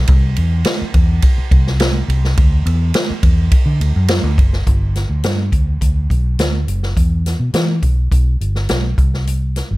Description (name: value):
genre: uptempo 1960s-style soul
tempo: 104 BPM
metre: 4/4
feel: straight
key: G major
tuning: A4 = 442 Hz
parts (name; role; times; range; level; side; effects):
- vintage muted fingered electric bass; bass; 0.0-9.8 s; F#1 to E3; -16 LUFS; equal; none
- swinging big-band drum kit; drums; 0.1-9.7 s; hi-hat, kick drum, ride cymbal, snare drum; -15 LUFS; equal; none
room: little or no reverb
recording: none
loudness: -13 LUFS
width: side -19 dB against mid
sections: 0.0-4.7 A section; 4.7-9.8 B section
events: none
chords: none